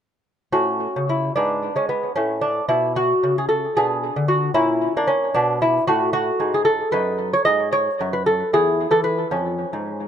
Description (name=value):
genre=classical, baroque-style dance for lute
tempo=75 BPM (dotted quarters)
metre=6/8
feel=rubato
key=unclear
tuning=A4 = 440 Hz
part: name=lute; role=solo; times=0.5-10.1 s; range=E2 to D#5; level=-18 LUFS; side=equal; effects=tape echo
room=light reverb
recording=close, detailed microphones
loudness=-18 LUFS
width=side -9 dB against mid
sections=0.5-10.1 A section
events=none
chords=0.5 A; 1.4 G#dim; 2.2 A; 3.8 Bm; 4.6 A#dim; 5.4 G#m7b5; 6.9 F#m69; 8.5 N.C.; 9.3 C#/E#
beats=| 0.54 1.36 | 2.16 2.97 | 3.76 4.56 | 5.36 6.15 | 6.94 7.72 | 8.52 9.32